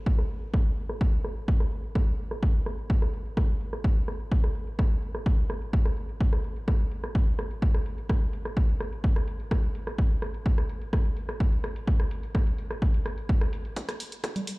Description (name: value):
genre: techno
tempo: 127 BPM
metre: 4/4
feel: straight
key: none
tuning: none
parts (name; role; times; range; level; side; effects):
- electronic kick drum; drums; 0.1-14.3 s; none; -25 LUFS; equal; high-pass filter on kick, high-pass filter on room
- punchy analog drum machine; drums; 0.1-14.6 s; congas, hi-hat, rim click; -37 LUFS; right 1 dB; low-pass filter on hats, low-pass filter on snare, low-pass filter on perc, low-pass filter on room
room: little or no reverb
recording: played on a big sound system in a bare room, stone room reverb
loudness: -25 LUFS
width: side -23 dB against mid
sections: 0.0-13.8 A section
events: none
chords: none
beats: 0.06 | 0.54 1.01 1.48 1.95 | 2.43 2.90 3.37 3.84 | 4.32 4.79 5.26 5.73 | 6.21 6.68 7.15 7.62 | 8.10 8.57 9.04 9.51 | 9.98 10.46 10.93 11.40 | 11.88 12.35 12.82 13.29 | 13.77 14.24